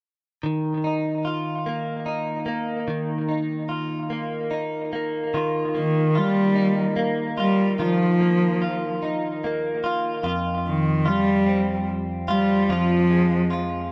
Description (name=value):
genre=six-eight pop ballad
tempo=49 BPM (dotted quarters)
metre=6/8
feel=straight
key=Eb major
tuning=A4 = 439 Hz
part: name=direct-recorded clean electric guitar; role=accompaniment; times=0.4-13.9 s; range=F2 to F4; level=-27 LUFS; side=equal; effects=double-tracked, analog delay
part: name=warm cello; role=melody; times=5.8-13.9 s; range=Eb3 to G3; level=-23 LUFS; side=equal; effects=analog delay
room=light reverb, studio ambience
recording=echo-heavy mix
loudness=-23 LUFS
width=mono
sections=0.4-5.3 A section; 5.3-13.9 B section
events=none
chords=0.4 Ebsus2; 10.2 Fm